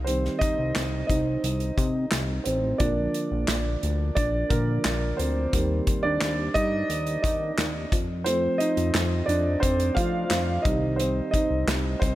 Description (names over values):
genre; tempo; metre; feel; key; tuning
piano-driven pop; 88 BPM; 4/4; straight; Bb major; A4 = 441 Hz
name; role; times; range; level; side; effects
dark upright piano; accompaniment; 0.0-12.2 s; D3 to F5; -26 LUFS; right 1 dB; none
chorused synth bass; bass; 0.0-12.2 s; A1 to F3; -28 LUFS; left 1 dB; none
natural country drum kit; drums; 0.1-12.2 s; handclaps, hi-hat, kick drum, snare drum; -28 LUFS; equal; none
room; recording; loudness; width
light reverb, small room reverb; none; -22 LUFS; side -15 dB against mid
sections
0.0-12.2 A section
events
upright piano solo 0.0-12.2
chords
0.0 Cm; 2.8 Bb; 5.5 Eb; 7.9 F; 10.7 Cm